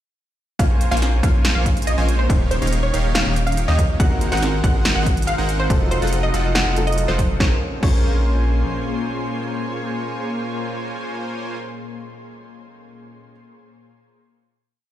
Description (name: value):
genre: future bass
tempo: 141 BPM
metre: 4/4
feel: half-time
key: Bb minor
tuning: A4 = 440 Hz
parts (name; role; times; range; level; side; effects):
- wide unison pluck; melody; 0.6-12.3 s; C5 to Gb5; -26 LUFS; right 1 dB; sidechain pumping, dub echo
- ethereal airy pad; sustained chords; 1.4-11.6 s; Bb2 to C6; -31 LUFS; left 2 dB; ensemble chorus, built-in reverb, sidechain pumping
- supersaw stab; riff; 0.6-11.6 s; Eb3 to Ab5; -26 LUFS; right 1 dB; sidechain pumping, tape echo
- saturated sub bass; bass; 0.6-8.6 s; Eb1 to Eb2; -20 LUFS; equal; sidechain pumping
- big-room dance drum kit; drums; 0.6-8.0 s; crash cymbal, hi-hat, snare drum; -25 LUFS; equal; none
- electronic kick drum; drums; 0.6-8.0 s; none; -18 LUFS; equal; none
- dark concert grand piano; accompaniment; 4.0-13.3 s; Gb3 to C5; -30 LUFS; left 1 dB; sidechain pumping, tape echo
room: little or no reverb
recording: played on a big sound system in a bare room, stone room reverb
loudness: -17 LUFS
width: side -12 dB against mid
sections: 0.6-7.4 drop; 7.4-10.8 final chord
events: drop 0.6-7.4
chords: 0.6 Bbm9; 2.3 Eb7; 4.0 Ab9; 5.7 F7b9; 7.4 Bbm9